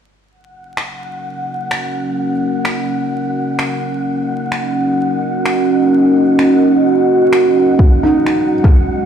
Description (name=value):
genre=future garage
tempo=128 BPM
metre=4/4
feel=swing 62% on 16ths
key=Eb minor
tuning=A4 = 439 Hz
part: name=deep dark ambient pad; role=sustained chords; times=1.8-9.1 s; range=Ab3 to Eb5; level=-14 LUFS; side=right 1 dB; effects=chorus, built-in reverb, sidechain pumping
part: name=wind-like tuned noise texture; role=texture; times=0.6-9.1 s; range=Gb5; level=-24 LUFS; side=left 1 dB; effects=built-in reverb
part: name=electronic finger snaps and rim click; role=drums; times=0.8-8.7 s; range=none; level=-22 LUFS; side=left 1 dB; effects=overdrive
part: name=electronic kick drum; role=drums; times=7.8-8.7 s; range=none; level=-9 LUFS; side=equal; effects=none
part: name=felt-muted upright piano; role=accompaniment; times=8.0-9.1 s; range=Eb4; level=-15 LUFS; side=equal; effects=sidechain pumping, tape echo
room=light reverb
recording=played on a big sound system in a bare room, stone room reverb, vinyl crackle, faint mains hum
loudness=-12 LUFS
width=side -8 dB against mid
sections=0.3-9.1 A section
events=filter sweep on ambient pad 0.3-9.1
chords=0.3 Ebm7; 7.8 Ab7(no3)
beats=| 0.30 0.77 1.24 1.71 | 2.18 2.65 3.12 3.58 | 4.05 4.52 4.99 5.46 | 5.93 6.40 6.87 7.33 | 7.80 8.27 8.74